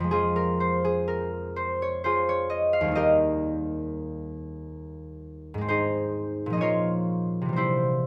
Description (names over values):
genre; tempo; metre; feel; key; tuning
classical, solo harp piece; 58-68 BPM; 3/4; rubato; F minor; A4 = 440 Hz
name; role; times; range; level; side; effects
concert harp; solo; 0.0-8.1 s; Eb2 to F5; -27 LUFS; equal; none
room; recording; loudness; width
light reverb; close, detailed microphones; -26 LUFS; mono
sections
0.0-8.1 A section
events
none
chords
0.1 Fm; 3.0 Eb; 5.7 Ab; 6.6 Bbm; 7.6 C7